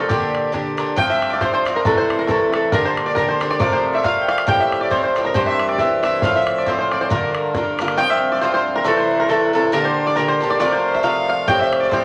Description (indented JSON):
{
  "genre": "celtic folk, Celtic polka",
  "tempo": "137 BPM",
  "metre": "2/4",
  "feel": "swing 56% on 8ths",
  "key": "unclear",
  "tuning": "A4 = 444 Hz",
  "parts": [
    { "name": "concert harp", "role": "melody", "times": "0.0-12.0 s", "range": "G4 to G5", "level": "-22 LUFS", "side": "equal", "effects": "none" },
    { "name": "bluegrass banjo", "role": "second line", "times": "0.0-12.0 s", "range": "G4 to G5", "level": "-28 LUFS", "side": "equal", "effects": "none" },
    { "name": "rich fiddle", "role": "second line", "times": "0.0-12.0 s", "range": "G4 to G5", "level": "-30 LUFS", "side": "equal", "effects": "none" },
    { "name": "Irish bouzouki", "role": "accompaniment", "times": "0.0-12.0 s", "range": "G2 to G4", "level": "-23 LUFS", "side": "equal", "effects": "none" },
    { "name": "bodhran", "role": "percussion", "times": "0.1-8.0, 11.5-12.0 s", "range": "none", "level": "-28 LUFS", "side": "equal", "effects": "none" }
  ],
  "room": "wet large studio reverb, RT60 0.8 s",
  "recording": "vinyl crackle, faint mains hum",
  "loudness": "-18 LUFS",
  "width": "mono",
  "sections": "1.0-8.0 A section; 8.0-12.0 A section",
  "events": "none",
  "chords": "0.1 Gm; 1.0 Csus4; 1.8 Am; 2.7 Gm; 3.6 F; 4.5 Fadd9; 5.4 C; 6.2 F; 7.1 Gm7; 8.0 Csus4; 8.9 Am; 9.7 Gm; 10.6 F; 11.5 Fadd9",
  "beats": "| 0.10 0.54 | 0.97 1.41 | 1.85 2.29 | 2.72 3.16 | 3.60 4.04 | 4.48 4.91 | 5.35 5.79 | 6.23 6.67 | 7.10 7.54 | 7.98 8.42 | 8.85 9.29 | 9.73 10.16 | 10.60 11.04 | 11.47 11.91"
}